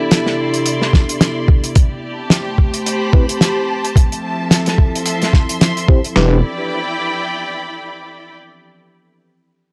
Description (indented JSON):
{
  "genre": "glitch hop",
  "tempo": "109 BPM",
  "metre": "4/4",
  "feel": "swing 57% on 16ths",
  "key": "E phrygian",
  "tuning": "A4 = 441 Hz",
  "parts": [
    { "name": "warbly tape-like pad", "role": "sustained chords", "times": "0.0-6.4 s", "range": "C3 to A4", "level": "-27 LUFS", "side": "equal", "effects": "chorus, built-in reverb, sidechain pumping" },
    { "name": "mellow tine electric piano", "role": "stabs", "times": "0.0-6.4 s", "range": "C4 to C5", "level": "-23 LUFS", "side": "equal", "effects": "sidechain pumping, low-pass filter, tape echo" },
    { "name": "clear studio string section", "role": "texture", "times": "0.0-8.3 s", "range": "F3 to C6", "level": "-25 LUFS", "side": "equal", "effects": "sidechain pumping" },
    { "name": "damped 70s drum kit", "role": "drums", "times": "0.1-6.1 s", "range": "hi-hat, snare drum", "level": "-18 LUFS", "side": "equal", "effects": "none" },
    { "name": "boom bap sampler-style drum kit", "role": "drums", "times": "0.9-6.3 s", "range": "kick drum, snare drum", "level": "-14 LUFS", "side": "equal", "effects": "none" },
    { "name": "wobble bass", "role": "bass", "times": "6.2-6.4 s", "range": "E1", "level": "-15 LUFS", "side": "equal", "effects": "chorus, overdrive" }
  ],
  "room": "light reverb, studio ambience",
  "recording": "dry, gritty hardware recording, transformer saturation, cassette tape",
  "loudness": "-16 LUFS",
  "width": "mono",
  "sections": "0.0-6.2 A section; 6.2-8.4 B section",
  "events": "filter sweep on tine electric piano 0.0-6.2",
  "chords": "0.0 Cmaj9; 1.8 Am9; 4.0 Fmaj7; 6.2 Em7"
}